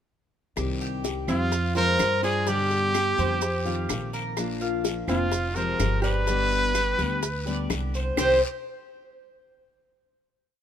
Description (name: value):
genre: latin, Cuban son and guajira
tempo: 126 BPM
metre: 4/4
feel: straight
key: C minor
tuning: A4 = 439 Hz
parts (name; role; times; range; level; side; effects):
- picked steel-string acoustic guitar; accompaniment; 0.6-8.4 s; B2 to G4; -32 LUFS; left 5 dB; none
- upright bass; bass; 0.6-8.4 s; F1 to G2; -29 LUFS; right 1 dB; none
- bongos; percussion; 0.6-8.3 s; none; -31 LUFS; left 5 dB; none
- claves; percussion; 0.6-8.3 s; none; -36 LUFS; right 5 dB; none
- guiro; percussion; 0.6-8.3 s; none; -41 LUFS; left 5 dB; none
- maracas; percussion; 0.6-8.3 s; none; -36 LUFS; right 5 dB; none
- Cuban tres; arpeggios; 0.8-8.4 s; C4 to F5; -30 LUFS; equal; none
- bright trumpet; melody; 1.3-8.4 s; F4 to C5; -26 LUFS; right 1 dB; none
- archtop guitar, miked and amplified; second line; 1.3-8.4 s; C4 to G4; -34 LUFS; right 4 dB; none
room: light reverb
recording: minimal, uncompressed stereo recording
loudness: -23 LUFS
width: side -9 dB against mid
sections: 0.6-8.2 verse; 8.2-10.1 final chord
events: none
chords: 0.6 Cm; 1.5 Fm; 2.5 G; 3.4 F7; 4.4 Bb; 5.3 Fmadd9; 6.3 G; 8.2 C5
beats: | 0.57 1.05 1.52 2.00 | 2.47 2.94 3.42 3.90 | 4.37 4.85 5.32 5.80 | 6.27 6.75 7.22 7.70 | 8.17